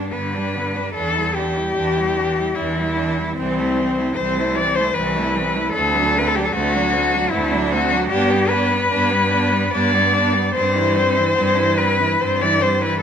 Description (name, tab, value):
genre	classical, lyrical piece for cello ensemble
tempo	74 BPM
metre	3/4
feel	rubato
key	G major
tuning	A4 = 436 Hz
part	warm cello	melody	0.0-13.0 s	C4 to D5	-19 LUFS	left 4 dB	none
part	rich cello	second line	0.0-13.0 s	B3 to E4	-26 LUFS	right 8 dB	none
part	warm cello	accompaniment	0.0-13.0 s	D3 to B3	-26 LUFS	equal	none
part	rich cello	bass	0.0-12.9 s	C2 to G2	-23 LUFS	right 2 dB	none
room	moderate recital hall reverb, RT60 1.5 s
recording	none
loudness	-16 LUFS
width	side -8 dB against mid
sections	0.0-13.0 A section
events	none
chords	0.0 G; 1.0 Em7; 3.4 Am/C; 5.7 D7; 8.1 G; 10.6 C/G